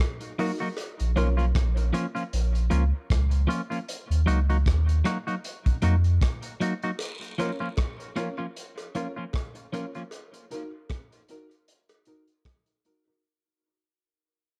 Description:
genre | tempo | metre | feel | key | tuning
dub reggae | 77 BPM | 4/4 | swing 57% on 16ths | Bb phrygian | A4 = 439 Hz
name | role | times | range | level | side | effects
crunchy breakbeat drum kit | drums | 0.0-13.1 s | hi-hat, kick drum, rim click | -31 LUFS | equal | none
clean electric guitar | accompaniment | 0.4-10.0 s | F3 to Gb4 | -33 LUFS | equal | harmonic tremolo, dub echo
dark upright piano | stabs | 0.4-1.3, 7.4-13.2 s | Db4 to Bb4 | -40 LUFS | equal | dub echo
cowbell and jawbone-type rattle | percussion | 0.8-1.0, 7.0-12.7 s | none | -44 LUFS | equal | dub echo
warm sub bass | bass | 1.0-6.2 s | Bb1 to F2 | -25 LUFS | equal | none
room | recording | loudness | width
little or no reverb | dark, warm production | -27 LUFS | mono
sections
0.0-7.0 A section; 7.0-13.2 B section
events
part muted 0.8-7.0; break 7.0-13.2; fade-out 7.0-13.2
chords
0.0 Ebm; 0.8 Bbm; 3.9 Ebm; 7.0 Bbm; 10.1 Ebm

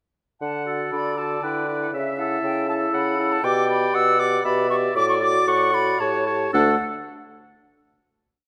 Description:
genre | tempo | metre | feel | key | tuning
quick classical-period movement for wind quintet | 117 BPM | 3/4 | straight | D major | A4 = 439 Hz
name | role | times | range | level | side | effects
silver concert flute | melody | 0.4-6.8 s | E5 to E6 | -27 LUFS | equal | none
bright clarinet | accompaniment | 0.4-6.8 s | D4 to G5 | -30 LUFS | equal | none
warm bassoon | bass | 0.4-6.8 s | D2 to D3 | -28 LUFS | equal | none
warm oboe | second line | 0.7-6.8 s | A4 to D5 | -28 LUFS | equal | none
mellow French horn | accompaniment | 0.7-6.8 s | A3 to G4 | -30 LUFS | equal | none
room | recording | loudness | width
moderate scoring stage reverb, RT60 1.6 s | none | -22 LUFS | mono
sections
0.4-6.5 A section; 6.5-8.1 final chord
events
none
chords
0.4 D; 1.4 Em7/D; 1.9 A/C#; 3.4 G/B; 5.0 D/A; 6.0 A7; 6.5 D5

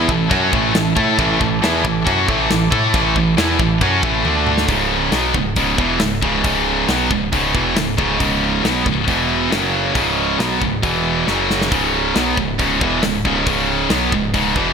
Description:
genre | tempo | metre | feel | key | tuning
heavy metal | 137 BPM | 4/4 | straight | C# phrygian | A4 = 440 Hz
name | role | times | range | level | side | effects
warm chamber string section | sustained chords | 0.0-4.7 s | D4 to E6 | -27 LUFS | left 1 dB | none
heavy high-gain guitar | riff | 0.0-14.7 s | C#2 to A4 | -18 LUFS | left 10 dB | distortion
high-gain distorted guitar | riff | 0.0-14.7 s | C#2 to A4 | -19 LUFS | right 8 dB | distortion
smooth synth bass | bass | 0.0-14.7 s | C#1 to A2 | -25 LUFS | equal | none
modern studio drum kit | drums | 0.1-14.7 s | china cymbal, hi-hat, kick drum, snare drum, toms | -22 LUFS | left 1 dB | none
room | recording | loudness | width
moderate lush hall reverb, RT60 2.0 s | bright 1980s-style digital production | -14 LUFS | side -6 dB against mid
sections
0.0-4.7 A section; 4.7-14.7 B section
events
drum fill 4.3-4.7, 11.3-11.7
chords
0.0 A5; 4.3 D5; 4.7 C#m; 9.1 E5; 9.5 F#5; 10.0 C#5; 10.8 E5; 11.3 F#5; 11.7 C#m

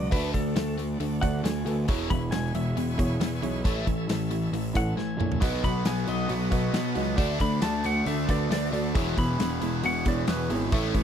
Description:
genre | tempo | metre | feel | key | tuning
classic rock | 136 BPM | 4/4 | straight | unclear | A4 = 440 Hz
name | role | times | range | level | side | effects
clean lap steel guitar | melody | 0.0-10.5 s | A4 to B5 | -33 LUFS | equal | none
clear upright piano | accompaniment | 0.0-11.0 s | E4 to D#5 | -36 LUFS | right 6 dB | none
bright tonewheel organ | sustained chords | 0.0-11.0 s | G#3 to E5 | -41 LUFS | equal | slow rotary speaker, overdrive
biting overdriven guitar | riff | 0.0-11.0 s | E2 to D4 | -30 LUFS | left 1 dB | none
fuzz picked electric bass | bass | 0.0-11.0 s | E1 to B2 | -30 LUFS | equal | overdrive
big rock drum kit | drums | 0.1-11.0 s | hi-hat, kick drum, snare drum, toms | -28 LUFS | equal | none
biting overdriven guitar | riff | 5.4-11.0 s | E2 to D4 | -32 LUFS | equal | none
room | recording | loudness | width
little or no reverb | dry, close 1970s-style studio recording | -24 LUFS | side -8 dB against mid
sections
0.0-11.0 A section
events
electric slide guitar solo 0.0-11.0; drum fill 5.0-5.4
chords
0.1 D; 1.9 E6; 3.6 A; 5.4 B; 7.2 D; 8.9 E6

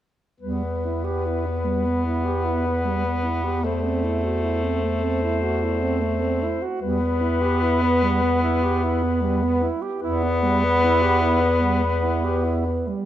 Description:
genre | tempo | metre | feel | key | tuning
classical, lyrical piece for single-reed quartet | 75 BPM | 4/4 | rubato | E minor | A4 = 440 Hz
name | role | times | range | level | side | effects
bright clarinet | melody | 0.4-12.9 s | B4 to C5 | -28 LUFS | left 7 dB | none
warm alto saxophone | second line | 0.4-13.1 s | G3 to G4 | -27 LUFS | right 6 dB | none
clear tenor saxophone | accompaniment | 0.4-12.9 s | A3 to B3 | -25 LUFS | left 3 dB | none
warm bass clarinet | bass | 0.4-12.9 s | E2 | -24 LUFS | right 1 dB | none
room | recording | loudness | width
moderate recital hall reverb, RT60 1.7 s | dark, warm production | -20 LUFS | side -12 dB against mid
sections
0.4-13.1 A section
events
none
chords
0.4 Em; 3.6 F#m7b5/E; 6.8 Em

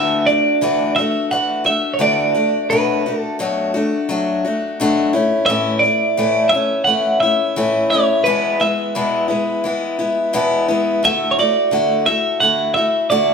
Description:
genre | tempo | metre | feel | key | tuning
rock | 86 BPM | 4/4 | straight | D major | A4 = 440 Hz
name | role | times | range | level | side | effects
twelve-string electric guitar | melody | 0.0-13.3 s | B4 to F#5 | -16 LUFS | right 3 dB | none
picked steel-string acoustic guitar | accompaniment | 0.0-13.3 s | E2 to F#4 | -17 LUFS | left 2 dB | none
room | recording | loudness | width
moderate large studio reverb, RT60 1.2 s | band playing live in one room | -14 LUFS | side -6 dB against mid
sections
0.0-13.3 A section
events
none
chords
0.0 Dadd9; 2.7 Bm7; 5.1 A; 8.3 E; 11.0 Dadd9

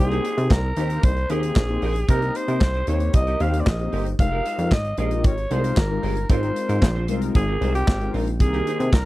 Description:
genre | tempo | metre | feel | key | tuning
early-eighties boogie funk | 114 BPM | 4/4 | straight | unclear | A4 = 438 Hz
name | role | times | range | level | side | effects
growling alto saxophone | melody | 0.0-9.1 s | G4 to F5 | -27 LUFS | equal | none
mellow synth brass | accompaniment | 0.0-8.9 s | Eb3 to G5 | -29 LUFS | left 4 dB | chorus, tremolo
plucky analog bass | bass | 0.0-9.1 s | F1 to C3 | -23 LUFS | equal | none
semi-hollow electric guitar | riff | 0.1-9.0 s | C4 to C5 | -32 LUFS | right 8 dB | ensemble chorus
modern studio drum kit | drums | 0.1-9.1 s | handclaps, hi-hat, kick drum, snare drum | -18 LUFS | equal | none
room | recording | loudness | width
little or no reverb | dry, close 1970s-style studio recording | -19 LUFS | side -17 dB against mid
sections
0.0-9.1 A section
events
none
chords
0.0 Cm7; 4.2 Fm11; 6.3 Ab69; 8.4 Cm7

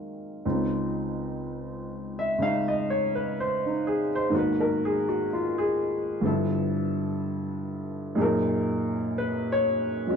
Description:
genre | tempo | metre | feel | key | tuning
jazz ballad | 62 BPM | 4/4 | swing 69% on 8ths | Db major | A4 = 435 Hz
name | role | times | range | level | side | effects
warm upright piano | solo | 0.0-10.2 s | Db2 to F5 | -25 LUFS | equal | none
room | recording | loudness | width
wet studio reverb, RT60 0.6 s | heard from further back in the room | -25 LUFS | side -6 dB against mid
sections
0.4-10.2 A section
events
none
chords
0.4 Dbmaj7; 4.3 Abm9; 6.2 G13; 8.2 Gb69

